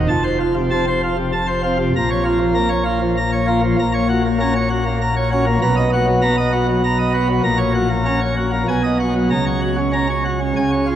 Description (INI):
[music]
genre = classical, organ toccata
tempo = 98 BPM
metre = 3/4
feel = straight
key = Bb minor, F# major from 3.8 s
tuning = A4 = 437 Hz
[part]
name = pipe organ, plenum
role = solo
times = 0.0-11.0 s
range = F1 to Bb5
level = -15 LUFS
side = equal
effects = none
[sound]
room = wet church reverb, RT60 3.5 s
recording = worn, warbling old tape, cassette tape, warbly pitch drift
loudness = -15 LUFS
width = side -10 dB against mid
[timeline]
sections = 0.0-11.0 A section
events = none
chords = 0.1 F; 1.9 Bbm; 3.8 F#/A#; 5.6 Bmaj7; 7.4 F#/A#; 8.7 G#m7/B; 9.3 F#/C#